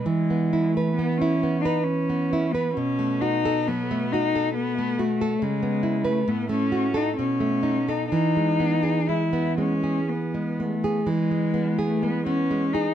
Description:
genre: romantic duo for cello and classical guitar.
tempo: 59-70 BPM.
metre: 3/4.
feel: rubato.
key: E major.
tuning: A4 = 437 Hz.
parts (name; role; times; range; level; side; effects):
rich cello; melody; 0.0-12.9 s; G#3 to E4; -25 LUFS; left 4 dB; none.
nylon-string guitar; accompaniment; 0.0-12.9 s; A2 to B4; -24 LUFS; right 4 dB; none.
room: little or no reverb.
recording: close, detailed microphones.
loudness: -21 LUFS.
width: side -10 dB against mid.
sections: 0.0-11.1 A section; 11.1-12.9 A section.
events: none.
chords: 0.0 E5; 2.8 B5; 5.4 C#m7; 6.3 F#m/A; 7.2 B7; 8.1 E.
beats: | 0.04 0.97 1.87 | 2.76 3.67 4.55 | 5.40 6.28 7.17 | 8.11 9.08 10.09 | 11.08 12.04.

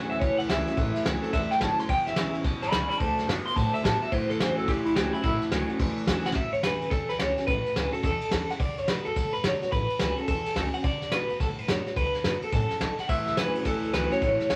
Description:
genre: rockabilly.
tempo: 214 BPM.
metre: 4/4.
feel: swing 64% on 8ths.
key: A mixolydian.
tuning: A4 = 439 Hz.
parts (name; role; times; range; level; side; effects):
electric guitar through a small old amp; melody; 0.0-14.6 s; E4 to C6; -31 LUFS; equal; tremolo.
picked steel-string acoustic guitar; accompaniment; 0.0-14.6 s; E2 to F#4; -38 LUFS; equal; none.
electric guitar through a small old amp; riff; 0.0-6.3, 13.1-14.6 s; E2 to B3; -34 LUFS; equal; spring reverb.
upright bass; bass; 0.0-14.6 s; E1 to A2; -38 LUFS; equal; none.
soft brush drum kit; drums; 0.1-14.6 s; kick drum, ride cymbal, snare drum; -31 LUFS; equal; none.
room: moderate small room reverb, RT60 0.5 s.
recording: vinyl crackle.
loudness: -27 LUFS.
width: mono.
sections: 0.0-6.4 A section; 6.4-14.6 B section.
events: clean electric guitar solo 0.0-6.4; drum fill 6.2.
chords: 0.0 A6; 1.9 E6; 3.0 D6; 4.1 A6; 8.6 D6; 9.7 A6; 10.8 D6; 13.1 A6.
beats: 0.21 0.49 | 0.77 1.05 1.33 1.61 | 1.89 2.17 2.45 2.73 | 3.01 3.29 3.57 3.85 | 4.12 4.40 4.68 4.96 | 5.24 5.52 5.80 6.08 | 6.36 6.64 6.92 7.20 | 7.48 7.76 8.04 8.32 | 8.60 8.88 9.16 9.44 | 9.72 10.00 10.28 10.56 | 10.84 11.12 11.41 11.69 | 11.97 12.25 12.53 12.81 | 13.09 13.37 13.65 13.93 | 14.21 14.50.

